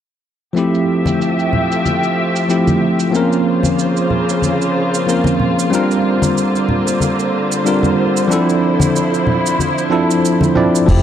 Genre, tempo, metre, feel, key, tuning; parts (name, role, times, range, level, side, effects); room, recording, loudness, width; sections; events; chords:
sunset chillout; 93 BPM; 4/4; swing 55% on 16ths; F major; A4 = 440 Hz
bell-like tine electric piano; accompaniment; 0.5-11.0 s; F3 to D5; -15 LUFS; equal; auto-pan, tape echo
muted studio string section; sustained chords; 0.6-11.0 s; Db3 to A5; -19 LUFS; equal; low-pass filter, shimmer reverb
electronic shaker and crash cymbal; drums; 0.6-11.0 s; -27 LUFS; right 7 dB; overdrive, low-pass filter on perc, low-pass filter on cymbals, low-pass filter on room
congas; percussion; 1.1-10.7 s; -20 LUFS; left 2 dB
mellow fretless electric bass; bass; 10.9-11.0 s; F1; -10 LUFS; equal
electronic kick drum; drums; 10.9-11.0 s; barely audible
moderate concert hall reverb, RT60 2.0 s, digital ambience; dark, warm production; -13 LUFS; side -10 dB against mid
0.6-10.9 A section
0.6 Fmaj9; 3.1 Bbmadd9; 5.7 C9sus4; 8.3 Dm9